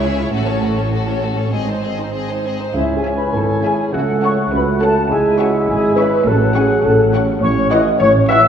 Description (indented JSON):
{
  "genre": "cinematic, playful, whimsical film cue",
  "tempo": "102 BPM",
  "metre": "2/4",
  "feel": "straight",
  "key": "C# minor",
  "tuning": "A4 = 440 Hz",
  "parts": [
    { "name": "rich studio violin section", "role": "melody", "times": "0.0-8.5 s", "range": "A4 to C#6", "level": "-29 LUFS", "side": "left 3 dB", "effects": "none" },
    { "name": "rich studio violin section", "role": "second line", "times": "0.0-8.5 s", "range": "E4 to F#5", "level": "-28 LUFS", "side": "left 2 dB", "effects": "none" },
    { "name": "rich studio viola section", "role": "accompaniment", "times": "0.0-8.5 s", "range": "A3 to E4", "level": "-26 LUFS", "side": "equal", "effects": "none" },
    { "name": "mellow tuba", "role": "bass", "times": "0.0-8.5 s", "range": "G#1 to C#2", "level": "-22 LUFS", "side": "right 3 dB", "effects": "none" },
    { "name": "rich studio cello section", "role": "bass", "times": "0.0-8.5 s", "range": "G#2 to C#3", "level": "-24 LUFS", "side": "right 1 dB", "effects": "none" },
    { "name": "rich studio double bass section", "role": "bass", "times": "0.0-8.5 s", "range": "G#1 to C#2", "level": "-23 LUFS", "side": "right 1 dB", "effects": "none" },
    { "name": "large flute ensemble", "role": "second line", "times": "2.7-8.5 s", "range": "E5 to E6", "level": "-22 LUFS", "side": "left 1 dB", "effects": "none" },
    { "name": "dark clarinet", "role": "second line", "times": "2.8-8.5 s", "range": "C#4 to A4", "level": "-24 LUFS", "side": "right 2 dB", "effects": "none" },
    { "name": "warm oboe", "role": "second line", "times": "2.8-8.4 s", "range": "E5 to G#5", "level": "-26 LUFS", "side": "left 1 dB", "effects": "none" },
    { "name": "dark bassoon", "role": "accompaniment", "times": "2.8-8.4 s", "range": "E3 to C#4", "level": "-22 LUFS", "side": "right 1 dB", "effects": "none" },
    { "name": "mellow French horn section", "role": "sustained chords", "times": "2.8-8.4 s", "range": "E4 to E5", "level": "-17 LUFS", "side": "left 1 dB", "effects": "none" }
  ],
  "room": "wet scoring stage reverb, RT60 1.8 s",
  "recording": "heard from further back in the room",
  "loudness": "-14 LUFS",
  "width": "side -8 dB against mid",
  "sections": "0.0-2.8 A section; 2.8-8.5 B section",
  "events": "none",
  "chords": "0.3 F#m/A; 1.5 G#; 2.8 C#m; 3.9 F#m/C#; 5.1 C#m; 6.3 F#m/A; 7.4 F#m7/A"
}